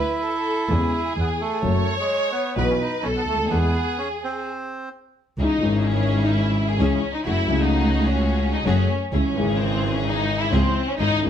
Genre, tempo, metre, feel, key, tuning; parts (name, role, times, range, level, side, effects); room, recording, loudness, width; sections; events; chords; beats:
tango; 128 BPM; 4/4; rubato; E major, C# minor from 5.4 s; A4 = 440 Hz
bandoneon; melody; 0.0-4.9 s; G#3 to E4; -27 LUFS; right 3 dB; plate reverb
warm studio violin section; second line; 0.0-11.3 s; B#3 to C#5; -24 LUFS; equal
dark concert grand piano; accompaniment; 0.7-11.3 s; G#1 to G#4; -25 LUFS; left 4 dB
dark double bass; bass; 0.7-11.3 s; F#1 to E2; -23 LUFS; right 1 dB
warm studio string section; stabs; 5.4-11.3 s; C#3 to G#4; -28 LUFS; right 2 dB
wet studio reverb, RT60 0.7 s; heard from further back in the room; -19 LUFS; side -9 dB against mid
0.0-5.4 A section; 5.4-11.3 B section
stop 4.4-5.4; violin section solo 5.4-11.3
0.0 Dsus2 (rootless); 0.7 C#m7/E; 1.6 F#m; 2.6 Bsus4; 3.0 N.C.; 3.5 E; 4.4 N.C.; 5.4 C#m; 7.3 F#madd9; 9.1 C#m/G#
0.23 0.70 1.16 | 1.63 2.10 2.57 3.03 | 3.50 3.97 4.44 4.92 | 5.39 5.86 6.32 6.79 | 7.26 7.72 8.19 8.65 | 9.12 9.59 10.05 10.52 | 10.99